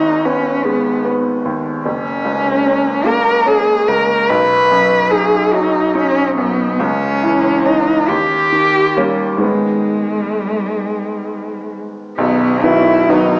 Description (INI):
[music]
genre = classical, romantic duo for cello and grand piano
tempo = 43-51 BPM (dotted quarters)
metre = 6/8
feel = rubato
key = G# minor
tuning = A4 = 440 Hz
[part]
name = rich cello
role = melody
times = 0.0-13.4 s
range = G3 to B4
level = -14 LUFS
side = equal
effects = none
[part]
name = bright concert grand piano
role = accompaniment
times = 0.0-13.4 s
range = B0 to D#4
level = -16 LUFS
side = equal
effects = none
[sound]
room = wet recital hall reverb, RT60 1.6 s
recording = worn, warbling old tape, cassette tape, warbly pitch drift, small speaker sound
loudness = -12 LUFS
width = side -31 dB against mid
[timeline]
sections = 0.0-12.2 A section; 12.2-13.4 B section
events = none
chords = 0.0 G#m; 1.9 F#; 4.3 B; 6.8 C#m; 8.1 D#7; 9.4 G#m; 12.2 B